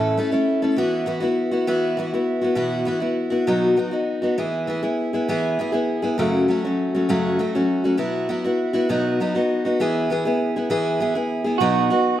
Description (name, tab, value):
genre	acoustic folk duo or small band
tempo	66 BPM (dotted quarters)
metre	6/8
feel	straight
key	E major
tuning	A4 = 437 Hz
part	picked steel-string acoustic guitar	accompaniment	0.0-12.2 s	F#2 to A4	-19 LUFS	equal	none
part	electric guitar through a small old amp	arpeggios	11.6-12.2 s	F#4	-19 LUFS	right 8 dB	tremolo
room	moderate large studio reverb, RT60 1.1 s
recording	none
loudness	-19 LUFS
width	side -12 dB against mid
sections	0.0-11.6 A section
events	none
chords	0.0 A; 0.8 Esus2; 2.6 Bsus4; 3.5 B; 4.4 E; 6.2 F#m; 8.0 Bsus4; 8.9 B; 9.8 E; 11.6 B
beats	| 0.78 1.68 | 2.58 3.48 | 4.39 5.29 | 6.19 7.09 | 7.99 8.89 | 9.79 10.70 | 11.60